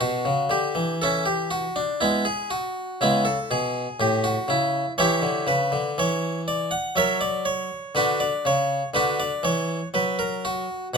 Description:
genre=classical, baroque-style suite movement for harpsichord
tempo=60 BPM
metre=3/4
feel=rubato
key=unclear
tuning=A4 = 441 Hz
part: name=harpsichord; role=solo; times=0.0-11.0 s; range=A2 to F#5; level=-22 LUFS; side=equal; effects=none
room=moderate large studio reverb, RT60 1.3 s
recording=close, detailed microphones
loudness=-21 LUFS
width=side -5 dB against mid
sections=0.0-11.0 A section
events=none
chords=0.0 A; 2.0 B13sus4; 4.0 A; 5.0 Em; 7.0 F#; 8.0 Dmaj13/C#; 9.9 N.C.

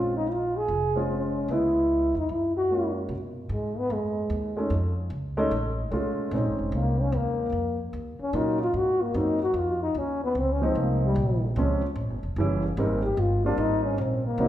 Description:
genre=jazz, small-group swing and bop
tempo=149 BPM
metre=4/4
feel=swing 65% on 8ths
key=Bb minor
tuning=A4 = 445 Hz
part: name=breathy trombone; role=melody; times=0.0-14.5 s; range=G3 to Ab4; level=-26 LUFS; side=left 1 dB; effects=none
part: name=warm upright piano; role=accompaniment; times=0.0-14.5 s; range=E3 to Eb5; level=-29 LUFS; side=right 1 dB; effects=none
part: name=upright bass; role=bass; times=0.0-14.5 s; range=E1 to B2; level=-29 LUFS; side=equal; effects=none
room=wet recital hall reverb, RT60 1.6 s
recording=recorded in a church or concert hall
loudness=-24 LUFS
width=side -12 dB against mid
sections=0.0-3.1 A section; 3.1-14.5 B section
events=none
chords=0.0 Bbm9; 1.5 Dbm7; 2.3 Gbadd9; 3.1 B6; 4.7 Faug; 6.3 Bbm11; 7.9 Ebm9; 8.7 Ab7; 9.5 Dbmaj9; 11.2 Bbm7; 12.0 A7; 12.8 Abmaj7

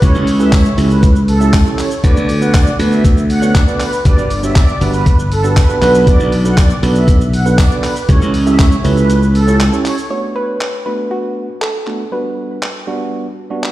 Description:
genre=dance-pop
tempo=119 BPM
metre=4/4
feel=straight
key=unclear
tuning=A4 = 438 Hz
part: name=filtered supersaw swell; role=melody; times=0.0-10.0 s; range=A4 to F#5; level=-21 LUFS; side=right 1 dB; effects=sidechain pumping, dub echo
part: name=bright tine electric piano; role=accompaniment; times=0.0-13.7 s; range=G3 to E5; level=-19 LUFS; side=right 4 dB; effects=sidechain pumping
part: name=glassy slap bass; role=bass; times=0.0-9.7 s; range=G1 to D2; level=-13 LUFS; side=equal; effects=sidechain pumping
part: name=boom bap sampler-style drum kit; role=drums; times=0.0-13.7 s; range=handclaps, hi-hat, kick drum, shaker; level=-13 LUFS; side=equal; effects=none
part: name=tambourine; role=percussion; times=0.5-9.7 s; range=none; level=-34 LUFS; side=left 9 dB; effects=none
part: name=soft round pluck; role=melody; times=10.1-12.6 s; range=F#4 to C#5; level=-21 LUFS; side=equal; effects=chorus, dub echo
room=little or no reverb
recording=played on a big sound system in a bare room, stone room reverb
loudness=-10 LUFS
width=side -15 dB against mid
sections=0.0-10.1 A section; 10.1-13.7 B section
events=drop 0.0-10.1; kick muted 9.1-10.1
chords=0.0 A7/C#; 2.0 D6; 4.1 Gmaj7; 5.8 Bm7; 8.1 A7/C#; 10.1 D6; 12.1 Gmaj7

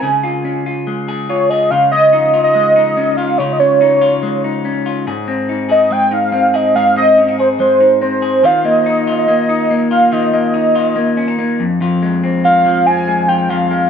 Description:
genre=indie pop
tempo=143 BPM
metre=4/4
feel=straight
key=unclear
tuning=A4 = 444 Hz
part: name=warm velvety synth lead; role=melody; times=0.0-13.9 s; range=C5 to Ab5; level=-12 LUFS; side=right 1 dB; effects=chorus, analog delay
part: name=electric guitar through a small old amp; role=arpeggios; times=0.0-13.9 s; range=F2 to Ab4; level=-16 LUFS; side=left 2 dB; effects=none
room=moderate large studio reverb, RT60 1.1 s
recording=dark, warm production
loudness=-11 LUFS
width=side -7 dB against mid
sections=0.0-1.7 A section; 1.7-13.9 B section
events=none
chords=0.0 Db; 1.7 Dbadd9; 5.1 Ab; 8.4 Ebsus2; 11.6 Fm

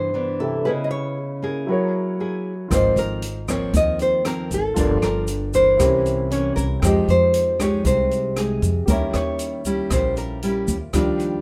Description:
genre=bossa nova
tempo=117 BPM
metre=4/4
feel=straight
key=unclear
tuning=A4 = 440 Hz
part: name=nylon-string guitar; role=melody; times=0.0-10.7 s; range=Ab4 to Eb5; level=-24 LUFS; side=equal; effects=none
part: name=nylon-string guitar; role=accompaniment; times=0.0-11.4 s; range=G2 to Ab4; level=-27 LUFS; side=equal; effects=none
part: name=warm baby grand piano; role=accompaniment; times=0.0-11.4 s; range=C3 to B5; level=-30 LUFS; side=equal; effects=none
part: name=upright bass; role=bass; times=2.7-11.4 s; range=G1 to F2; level=-27 LUFS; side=equal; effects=none
part: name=open jazz drum kit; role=drums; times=2.7-11.3 s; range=hi-hat, kick drum, rim click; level=-29 LUFS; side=equal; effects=none
part: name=tube shaker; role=percussion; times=2.7-11.4 s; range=none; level=-37 LUFS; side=equal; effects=none
room=light reverb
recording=none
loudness=-21 LUFS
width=mono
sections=0.0-10.9 A section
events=none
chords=0.0 Cmaj9; 0.7 Dbm7; 1.7 Gb9; 2.7 Ab69; 4.8 Gm7; 5.8 C7b9; 6.8 Fm9; 8.9 Eb7b9

